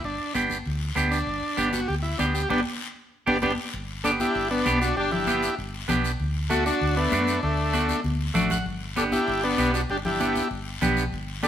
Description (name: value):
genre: latin, cumbia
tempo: 195 BPM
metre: 4/4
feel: straight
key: G major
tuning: A4 = 441 Hz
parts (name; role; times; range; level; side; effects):
- combo organ; melody; 0.0-11.5 s; A3 to A4; -26 LUFS; equal; none
- hollow-body short-scale fingered electric bass; bass; 0.0-11.5 s; G1 to F#2; -30 LUFS; equal; none
- guiro; percussion; 0.0-11.5 s; none; -36 LUFS; left 5 dB; none
- semi-hollow electric guitar; accompaniment; 0.3-11.5 s; A3 to F#5; -27 LUFS; right 4 dB; none
- congas; percussion; 0.4-11.5 s; none; -30 LUFS; left 3 dB; none
- bright trumpet; second line; 4.0-11.5 s; A3 to F#4; -32 LUFS; left 6 dB; none
room: moderate stone room reverb, RT60 1.0 s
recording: band playing live in one room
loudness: -22 LUFS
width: side -10 dB against mid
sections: 0.0-3.7 A section; 3.7-11.5 B section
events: band accent 2.5-3.7; drum fill 8.0-8.7; clean electric guitar fill 8.2-8.7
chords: 0.0 G; 6.2 D; 8.7 G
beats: | 0.04 0.35 0.66 0.97 | 1.27 1.58 1.89 2.20 | 2.51 2.81 3.12 3.43 | 3.74 4.04 4.35 4.66 | 4.97 5.27 5.58 5.89 | 6.20 6.50 6.81 7.12 | 7.43 7.74 8.04 8.35 | 8.66 8.97 9.28 9.58 | 9.89 10.20 10.51 10.81 | 11.12 11.43